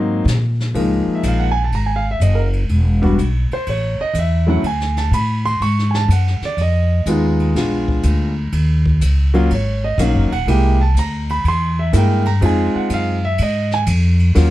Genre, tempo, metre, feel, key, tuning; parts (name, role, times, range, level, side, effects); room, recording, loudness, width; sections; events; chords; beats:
jazz piano trio; 123 BPM; 4/4; swing 68% on 8ths; A4 = 440 Hz
warm concert grand piano; melody; 0.0-14.5 s; F3 to Db6; -19 LUFS; equal
upright bass; bass; 0.0-14.5 s; Eb1 to Bb2; -16 LUFS; equal
jazz brush drum kit; drums; 0.3-14.5 s; hi-hat, kick drum, ride cymbal, snare drum; -29 LUFS; equal
light reverb; dark, warm production; -14 LUFS; side -15 dB against mid
0.8-14.5 A section
grand piano solo 0.0-14.5
0.0 Ab9; 0.8 Db6; 2.7 E5; 3.7 A; 4.6 D; 6.6 Fm7b5; 7.6 Bb7b9; 8.5 Ebm9; 10.5 C7b13; 12.4 Fm7
0.26 | 0.75 1.24 1.72 2.21 | 2.70 3.18 3.67 4.16 | 4.64 5.13 5.62 6.10 | 6.59 7.07 7.56 8.05 | 8.53 9.02 9.50 9.99 | 10.47 10.96 11.45 11.93 | 12.41 12.90 13.38 13.87 | 14.36